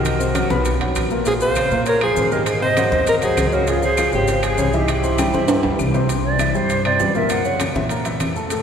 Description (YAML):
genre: Afro-Cuban jazz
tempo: 198 BPM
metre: 4/4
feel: straight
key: unclear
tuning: A4 = 440 Hz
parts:
  - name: warm alto saxophone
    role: melody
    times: 0.0-5.8 s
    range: Eb4 to C5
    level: -22 LUFS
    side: equal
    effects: none
  - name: breathy bright concert flute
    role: second line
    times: 0.0-7.6 s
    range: G4 to F#5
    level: -23 LUFS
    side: right 3 dB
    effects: none
  - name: warm grand piano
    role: accompaniment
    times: 0.0-8.6 s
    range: A2 to C6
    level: -22 LUFS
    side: left 2 dB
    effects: none
  - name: upright bass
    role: bass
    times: 0.0-8.6 s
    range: Ab1 to Bb2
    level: -23 LUFS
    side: equal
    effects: none
  - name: maracas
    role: percussion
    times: 0.0-8.6 s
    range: none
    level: -34 LUFS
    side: left 7 dB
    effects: none
  - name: claves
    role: percussion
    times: 0.1-8.4 s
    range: none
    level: -34 LUFS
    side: left 2 dB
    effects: none
  - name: congas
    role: percussion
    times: 0.1-8.6 s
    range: none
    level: -28 LUFS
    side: left 1 dB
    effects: none
  - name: timbales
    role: percussion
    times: 0.1-8.6 s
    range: none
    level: -27 LUFS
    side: right 3 dB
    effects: none
room: wet cathedral reverb, RT60 5.8 s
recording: recorded in a church or concert hall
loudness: -16 LUFS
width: side -7 dB against mid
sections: 0.0-6.1 A section; 6.1-8.6 B section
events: drum fill 5.5-6.1; flute solo 6.1-8.6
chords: 0.1 Cm7b5; 0.7 B5; 1.3 Bbm9; 2.5 Ab7; 3.7 Dbmaj7; 4.9 C; 7.3 F#7